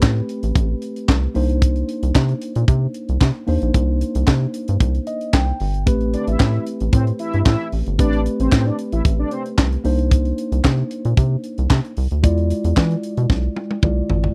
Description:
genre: early-eighties boogie funk.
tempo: 113 BPM.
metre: 4/4.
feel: straight.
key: A minor.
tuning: A4 = 441 Hz.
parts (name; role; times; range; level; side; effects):
mellow tine electric piano; accompaniment; 0.0-14.3 s; G#3 to G5; -27 LUFS; equal; none.
rubbery square bass; bass; 0.0-14.3 s; G1 to E3; -21 LUFS; equal; none.
tight funk drum kit; drums; 0.0-14.3 s; handclaps, hi-hat, kick drum, snare drum, toms; -19 LUFS; equal; none.
mellow synth brass; second line; 6.1-9.4 s; C4 to E5; -27 LUFS; equal; chorus.
room: little or no reverb.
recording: dry, close 1970s-style studio recording.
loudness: -19 LUFS.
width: mono.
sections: 0.0-14.3 A section.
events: tine electric piano fill 4.8-5.9; drum fill 13.3-14.3.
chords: 0.0 Am9; 1.4 Cm9; 5.9 Am9; 9.8 Cm9; 12.2 E7b9.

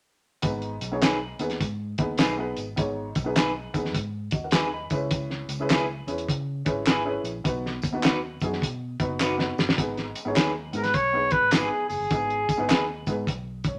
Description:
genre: uptempo 1960s-style soul.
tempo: 103 BPM.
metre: 4/4.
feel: swing 65% on 8ths.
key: G# minor.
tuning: A4 = 442 Hz.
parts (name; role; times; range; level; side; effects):
dark upright piano; accompaniment; 0.4-13.8 s; G#2 to B5; -34 LUFS; equal; none.
vintage muted fingered electric bass; bass; 0.4-13.8 s; F#1 to C#3; -38 LUFS; equal; none.
cloth-damped thuddy drum kit; drums; 0.4-13.7 s; hi-hat, kick drum, snare drum; -28 LUFS; equal; none.
tambourine and handclaps; percussion; 0.5-13.4 s; none; -38 LUFS; equal; none.
electric guitar through a small old amp; stabs; 1.0-12.8 s; D#4 to B4; -30 LUFS; equal; none.
mellow trumpet; melody; 10.8-13.0 s; G#4 to C#5; -26 LUFS; equal; none.
room: light reverb.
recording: none.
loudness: -26 LUFS.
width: mono.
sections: 0.4-9.8 A section; 9.8-13.8 B section.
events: drum fill 9.2-9.8.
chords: 0.4 G#m; 4.8 C#m7; 7.4 B; 9.8 G#m.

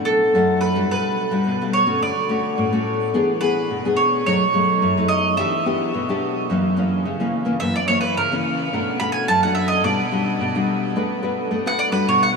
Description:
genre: samba.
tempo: 108 BPM.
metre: 4/4.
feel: straight.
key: B minor.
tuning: A4 = 439 Hz.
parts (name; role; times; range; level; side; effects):
nylon-string guitar; accompaniment; 0.0-12.4 s; F#2 to B4; -20 LUFS; left 2 dB; lush chorus.
mandolin; melody; 0.1-12.3 s; A4 to B5; -21 LUFS; right 2 dB; tape echo.
room: wet huge ambient reverb, RT60 7.4 s.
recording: dreamy mix soaked in reverb, small room ambience.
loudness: -18 LUFS.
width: side -4 dB against mid.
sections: 0.0-12.4 A section.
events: mandolin solo 0.0-12.4.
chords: 0.0 Bm7; 0.9 Gmaj7/B; 2.0 Dmaj7; 3.1 E7; 4.3 B7; 5.4 Em7; 6.5 F#7; 8.7 Bm7; 9.8 Gmaj7/B; 11.0 D6/A.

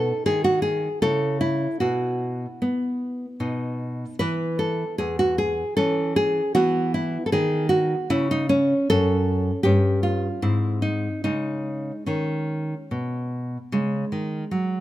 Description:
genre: classical, baroque-style dance for nylon-string guitar.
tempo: 72-80 BPM.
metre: 3/4.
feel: rubato.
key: E major, C# minor from 8.9 s.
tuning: A4 = 440 Hz.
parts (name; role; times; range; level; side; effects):
nylon-string guitar; solo; 0.0-14.8 s; E2 to B4; -21 LUFS; equal; none.
room: light reverb.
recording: close, detailed microphones.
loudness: -21 LUFS.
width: side -14 dB against mid.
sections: 0.0-13.7 A section; 13.7-14.8 B section.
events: none.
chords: 0.0 B (rootless); 1.0 A/C#; 1.8 Bsus4; 3.4 B; 4.2 N.C.; 5.8 A/E; 6.6 E5; 8.1 N.C.; 8.9 F#m; 9.6 Fsus2/G; 10.4 G#; 11.2 C#5.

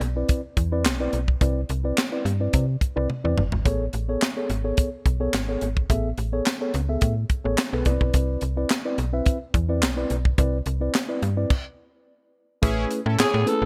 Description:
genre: early-eighties boogie funk.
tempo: 107 BPM.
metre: 4/4.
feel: straight.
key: unclear.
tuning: A4 = 442 Hz.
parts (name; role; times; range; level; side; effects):
slap-like FM bass; bass; 0.0-13.7 s; G1 to C3; -27 LUFS; equal; none.
tight funk drum kit; drums; 0.0-13.6 s; crash cymbal, handclaps, hi-hat, kick drum, snare drum, toms; -26 LUFS; equal; gated reverb.
mellow tine electric piano; accompaniment; 0.2-13.7 s; A3 to E5; -30 LUFS; equal; none.
analog synth brass; second line; 12.6-13.4 s; C#4 to C#5; -32 LUFS; equal; chorus.
breathy alto saxophone; melody; 13.2-13.7 s; G#4 to A4; -24 LUFS; equal; slapback echo.
room: studio reverb.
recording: none.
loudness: -24 LUFS.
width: mono.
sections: 0.0-12.6 A section; 12.6-13.7 B section.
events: drum fill 3.1-3.7; stop 11.5-12.6.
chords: 0.0 Cmaj9; 3.7 Amaj9; 7.9 Cmaj9; 12.6 Amaj9.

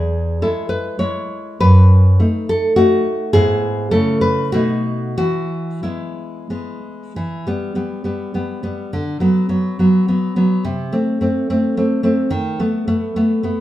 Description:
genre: romantic piece for solo classical guitar.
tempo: 88-111 BPM.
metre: 3/4.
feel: rubato.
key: E major, E minor from 7.2 s.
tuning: A4 = 445 Hz.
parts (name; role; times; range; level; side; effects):
nylon-string guitar; solo; 0.0-13.6 s; E2 to C#5; -15 LUFS; equal; none.
room: wet large studio reverb, RT60 0.9 s.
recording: band playing live in one room.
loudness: -15 LUFS.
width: side -14 dB against mid.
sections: 0.0-7.2 A section; 7.2-13.6 B section.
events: none.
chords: 0.0 E; 1.6 B7/F#; 3.4 E/G#; 3.9 A/C#; 4.5 B7; 5.2 E; 7.2 Em; 8.9 Bm/D; 10.7 Am/C; 12.3 B7/D#.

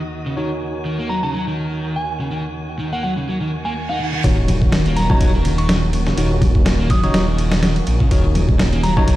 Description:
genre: breakbeat, breaks.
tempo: 124 BPM.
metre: 4/4.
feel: swing 55% on 16ths.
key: Eb minor.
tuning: A4 = 441 Hz.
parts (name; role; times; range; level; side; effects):
tonewheel organ; sustained chords; 0.0-9.2 s; Eb2 to Ab5; -29 LUFS; right 2 dB; overdrive, wide subtle chorus, sidechain pumping.
tine electric piano; stabs; 0.0-9.2 s; Eb4 to Db5; -28 LUFS; left 2 dB; medium tremolo, ping-pong delay.
crunchy overdriven guitar; riff; 0.3-9.2 s; Db3 to Eb4; -24 LUFS; equal; tube saturation, vintage 12-bit sampler grit, ping-pong delay.
glassy synth bell; melody; 1.1-9.1 s; Gb5 to Eb6; -27 LUFS; right 1 dB; chorus, small speaker sound, vintage 12-bit sampler grit, ping-pong delay.
reverse cymbal and sub drop; sound effects; 3.6-6.2 s; none; -28 LUFS; right 1 dB; none.
dark detuned saw bass; bass; 4.2-9.2 s; Eb1 to Bb1; -18 LUFS; equal; none.
dusty soul sampler-style drum kit; drums; 4.2-9.2 s; kick drum, ride cymbal, snare drum; -18 LUFS; equal; none.
congas; percussion; 4.5-9.1 s; none; -25 LUFS; left 2 dB; none.
room: little or no reverb.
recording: played on a big sound system in a bare room, stone room reverb.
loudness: -16 LUFS.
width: side -15 dB against mid.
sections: 0.0-4.2 A section; 4.2-9.2 B section.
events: reverse cymbal 3.6-4.2; drop 4.2-9.2; impact 4.2-6.2.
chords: 0.0 Ebm7.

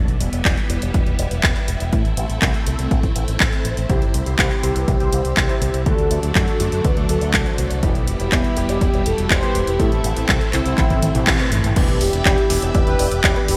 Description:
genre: italo disco.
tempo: 122 BPM.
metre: 4/4.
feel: straight.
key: E minor.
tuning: A4 = 438 Hz.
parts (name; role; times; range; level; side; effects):
phased string machine; sustained chords; 0.0-13.6 s; B2 to B5; -31 LUFS; equal; ensemble chorus, phaser.
fingered electric bass with an envelope filter; bass; 0.0-13.6 s; E1 to A2; -25 LUFS; equal; none.
house drum kit; drums; 0.1-13.6 s; crash cymbal, handclaps, hi-hat, toms; -25 LUFS; equal; studio reverb.
electronic kick drum; drums; 0.5-13.3 s; none; -23 LUFS; equal; studio reverb.
warm electric grand piano; stabs; 3.9-13.6 s; A2 to E5; -29 LUFS; equal; ensemble chorus.
mellow synth brass; melody; 4.6-13.6 s; B3 to C5; -26 LUFS; equal; chorus, digital delay.
room: moderate lush hall reverb, RT60 2.1 s.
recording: bright 1980s-style digital production.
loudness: -19 LUFS.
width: mono.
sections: 0.0-11.8 A section; 11.8-13.6 B section.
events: drum fill 10.8-11.8; band accent 11.3.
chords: 0.0 Em; 1.9 Am; 3.9 C; 5.9 D; 7.8 Em; 9.8 Am; 11.8 Em7.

